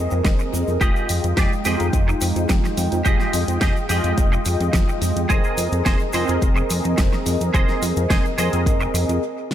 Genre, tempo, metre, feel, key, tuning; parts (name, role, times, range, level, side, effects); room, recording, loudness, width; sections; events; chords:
nu-disco, nu disco; 107 BPM; 4/4; straight; F minor; A4 = 440 Hz
mellow synth brass; accompaniment; 0.0-9.2 s; Ab3 to G5; -24 LUFS; equal; chorus, sidechain pumping, tape echo
fat analog bass; bass; 0.0-9.2 s; F1 to F2; -22 LUFS; equal
cabasa; percussion; 0.1-9.2 s; -34 LUFS; right 1 dB; tape echo
clean electric guitar; riff; 0.2-9.0 s; G4 to Eb5; -26 LUFS; right 2 dB; ensemble chorus, tape echo
electronic kick drum; drums; 0.2-8.8 s; -20 LUFS; equal
pop drum kit; drums; 0.2-9.5 s; hi-hat, snare drum; -28 LUFS; equal; tape echo
light reverb; echo-heavy mix; -17 LUFS; side -11 dB against mid
0.0-9.5 A section
stop 9.2-9.5
0.0 Bb9sus4/F; 0.8 Fm9; 5.3 Bb9sus4/F